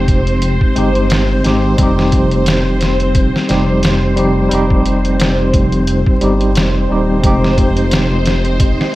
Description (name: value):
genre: trip hop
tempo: 88 BPM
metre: 4/4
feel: swing 56% on 16ths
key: F minor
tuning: A4 = 440 Hz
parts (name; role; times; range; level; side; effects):
- tine electric piano; accompaniment; 0.0-8.9 s; G3 to G4; -16 LUFS; equal; medium stereo tremolo
- string machine, cellos; sustained chords; 0.0-8.9 s; C5; -21 LUFS; equal; phaser, ensemble chorus
- dark detuned saw bass; bass; 0.0-8.8 s; Eb1 to Ab1; -16 LUFS; equal; none
- trip hop sampler-style drum kit; drums; 0.1-8.9 s; hi-hat, kick drum, snare drum; -16 LUFS; equal; studio reverb
- wind-like tuned noise texture; texture; 7.9-8.9 s; Eb4; -29 LUFS; right 3 dB; built-in reverb
room: digital ambience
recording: vinyl crackle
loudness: -11 LUFS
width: side -17 dB against mid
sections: 0.0-8.9 A section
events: none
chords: 0.0 Fm9; 1.8 Cm/F; 7.2 Fm9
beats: 0.42 1.10 | 1.79 2.47 3.15 3.83 | 4.51 5.20 5.88 6.56 | 7.24 7.92 8.60